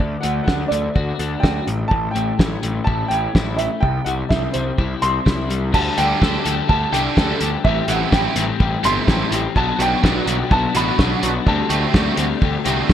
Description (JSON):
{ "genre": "indie rock", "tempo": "126 BPM", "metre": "4/4", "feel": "straight", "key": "unclear", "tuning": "A4 = 440 Hz", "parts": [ { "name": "dark upright piano", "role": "melody", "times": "0.0-12.9 s", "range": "C5 to C6", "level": "-23 LUFS", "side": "right 2 dB", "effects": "wide subtle chorus" }, { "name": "electric guitar at the edge of break-up", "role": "riff", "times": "0.0-12.9 s", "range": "A2 to A4", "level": "-23 LUFS", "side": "left 9 dB", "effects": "analog chorus" }, { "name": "fuzz picked electric bass", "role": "bass", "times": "0.0-12.9 s", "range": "G1 to D2", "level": "-23 LUFS", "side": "equal", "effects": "overdrive" }, { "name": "cloth-damped thuddy drum kit", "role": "drums", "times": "0.0-12.9 s", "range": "crash cymbal, hi-hat, kick drum, snare drum", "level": "-19 LUFS", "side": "equal", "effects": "gated reverb" }, { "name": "crunchy overdriven guitar", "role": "riff", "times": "6.0-12.9 s", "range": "D3 to A4", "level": "-24 LUFS", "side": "right 9 dB", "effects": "ensemble chorus" }, { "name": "ensemble organ-string", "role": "sustained chords", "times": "9.5-12.9 s", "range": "F#3 to C6", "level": "-32 LUFS", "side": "right 1 dB", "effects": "none" } ], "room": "light reverb, studio ambience", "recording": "bright 1980s-style digital production", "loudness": "-16 LUFS", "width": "side -10 dB against mid", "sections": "0.0-5.7 A section; 5.7-12.9 B section", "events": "none", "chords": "0.0 D; 1.7 A; 3.8 C; 5.7 Dsus4; 7.7 Am7; 9.6 Bm; 11.5 D7sus4", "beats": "0.47 0.95 1.43 | 1.91 2.39 2.87 3.35 | 3.83 4.30 4.78 5.26 | 5.74 6.22 6.70 7.17 | 7.65 8.13 8.61 9.08 | 9.56 10.04 10.52 10.99 | 11.47 11.94 12.42 12.89" }